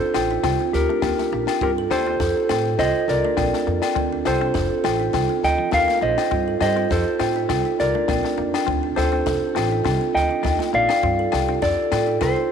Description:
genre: highlife guitar band.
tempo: 102 BPM.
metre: 4/4.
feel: swing 54% on 16ths.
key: F mixolydian.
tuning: A4 = 440 Hz.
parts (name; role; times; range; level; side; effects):
mellow electric guitar; melody; 0.0-12.5 s; G4 to G5; -22 LUFS; left 1 dB; none.
kalimba; arpeggios; 0.0-12.5 s; C4 to A4; -24 LUFS; right 9 dB; tape echo.
clean electric guitar; accompaniment; 0.1-12.4 s; F3 to D4; -33 LUFS; left 13 dB; none.
compact cocktail drum kit; drums; 0.1-12.4 s; kick drum, snare drum; -29 LUFS; left 5 dB; none.
agogo bells; percussion; 0.1-12.4 s; none; -28 LUFS; left 13 dB; none.
upright bass; bass; 0.2-12.3 s; F1 to A2; -26 LUFS; left 1 dB; none.
room: moderate echo chamber reverb, RT60 2.3 s.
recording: 1960s-style stereo with parts hard left and right.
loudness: -18 LUFS.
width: side -7 dB against mid.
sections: 0.0-12.5 A section.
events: none.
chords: 0.0 F; 1.0 Ebadd9; 2.2 F; 3.4 Bbadd9; 4.5 F; 5.7 Ebadd9; 6.9 F; 8.1 Bbadd9; 9.3 F; 10.4 Ebadd9; 11.6 F.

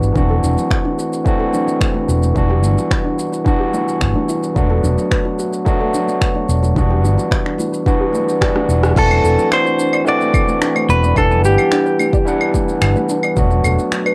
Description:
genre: sunset chillout.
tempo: 109 BPM.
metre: 4/4.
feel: straight.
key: E minor.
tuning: A4 = 440 Hz.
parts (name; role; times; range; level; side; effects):
overdriven tine electric piano; accompaniment; 0.0-14.1 s; E3 to F#5; -20 LUFS; equal; tape echo.
mellow fretless electric bass; bass; 0.0-13.8 s; E1 to G1; -18 LUFS; equal; none.
deep house drum kit; drums; 0.0-14.1 s; claves, crash cymbal, finger snaps, rim click, shaker; -25 LUFS; equal; cassette tape.
soft round pluck; arpeggios; 0.2-14.1 s; D4 to D5; -28 LUFS; equal; ensemble chorus, tape echo.
electronic kick drum; drums; 0.2-13.5 s; none; -20 LUFS; equal; cassette tape.
congas and bongos; percussion; 0.3-14.1 s; none; -32 LUFS; equal; none.
semi-hollow electric guitar; melody; 9.0-13.1 s; G4 to D5; -19 LUFS; equal; vintage 12-bit sampler grit, cassette tape, tape echo.
room: moderate studio reverb, RT60 0.6 s.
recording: home recording on cassette.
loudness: -16 LUFS.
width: mono.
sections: 0.0-9.0 A section; 9.0-14.1 B section.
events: drum fill 8.4-9.0; band accent 8.8.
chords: 0.2 D7/E; 2.4 Em7; 4.6 Bm7/E; 6.8 Em7; 9.0 D7/E; 11.2 Em7; 13.4 Bm7/E.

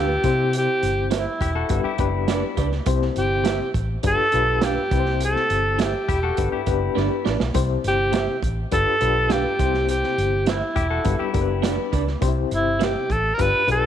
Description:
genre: uptempo 1960s-style soul.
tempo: 103 BPM.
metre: 4/4.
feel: straight.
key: unclear.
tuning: A4 = 438 Hz.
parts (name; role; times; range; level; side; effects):
breathy alto saxophone; melody; 0.0-13.9 s; E4 to B4; -22 LUFS; right 1 dB; none.
overdriven reed electric piano; accompaniment; 0.0-13.9 s; G2 to C5; -27 LUFS; left 11 dB; fast tremolo.
electric guitar through a small old amp; stabs; 0.0-12.9 s; D4 to F5; -30 LUFS; right 11 dB; spring reverb.
vintage muted fingered electric bass; bass; 0.0-13.9 s; E1 to C3; -25 LUFS; equal; none.
crunchy breakbeat drum kit; drums; 0.2-13.8 s; hi-hat, kick drum, snare drum; -26 LUFS; right 3 dB; none.
semi-hollow electric guitar; riff; 1.4-12.0 s; E4 to A4; -30 LUFS; left 9 dB; spring reverb.
room: light reverb, small room ambience.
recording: 1960s-style stereo with parts hard left and right.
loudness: -19 LUFS.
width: side -10 dB against mid.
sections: 0.0-13.9 A section.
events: drum fill 7.0-7.5.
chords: 0.2 C; 1.7 G; 2.9 C; 4.0 G7; 4.9 C; 6.4 G; 7.5 C; 8.7 G7; 9.6 C; 11.1 G; 12.2 C.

